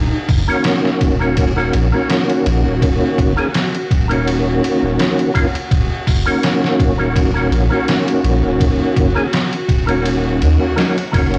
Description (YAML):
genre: trip hop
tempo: 83 BPM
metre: 4/4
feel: swing 54% on 16ths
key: Eb minor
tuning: A4 = 438 Hz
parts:
  - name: round analog bass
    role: bass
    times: 0.0-11.4 s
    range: Eb1 to Eb2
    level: -20 LUFS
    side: equal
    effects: none
  - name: bowed-like drone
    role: texture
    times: 1.2-11.4 s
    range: Gb4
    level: -31 LUFS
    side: equal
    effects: built-in reverb, phaser
  - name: trip hop sampler-style drum kit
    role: drums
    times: 0.3-11.4 s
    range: hi-hat, kick drum, ride cymbal, snare drum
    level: -21 LUFS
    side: equal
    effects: none
  - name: percussive tonewheel organ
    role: accompaniment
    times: 0.5-11.4 s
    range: Eb3 to Ab4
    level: -19 LUFS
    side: equal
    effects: chorus vibrato, fast rotary speaker, harmonic tremolo, tape echo
room: light reverb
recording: blown-out, overdriven recording, vinyl crackle, overdrive, small room reverb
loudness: -16 LUFS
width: mono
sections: 0.0-11.4 A section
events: none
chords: 0.0 Ebm7